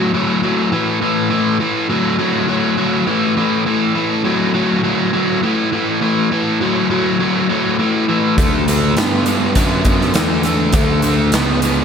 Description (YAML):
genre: blues rock power trio and southern rock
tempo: 102 BPM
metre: 4/4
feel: straight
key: A mixolydian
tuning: A4 = 440 Hz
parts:
  - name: biting overdriven guitar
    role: riff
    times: 0.0-11.8 s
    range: A2 to B3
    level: -14 LUFS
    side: left 1 dB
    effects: none
  - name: fuzz picked electric bass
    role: bass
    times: 8.4-11.8 s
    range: C#2 to G2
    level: -19 LUFS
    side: right 1 dB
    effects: overdrive
  - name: huge arena drum kit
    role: drums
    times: 8.4-11.8 s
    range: hi-hat, kick drum, snare drum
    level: -18 LUFS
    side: right 1 dB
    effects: none
room: wet lush hall reverb, RT60 2.3 s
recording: big arena sound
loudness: -14 LUFS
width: side -7 dB against mid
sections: 0.0-11.8 A section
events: none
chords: 0.0 A5; 8.4 D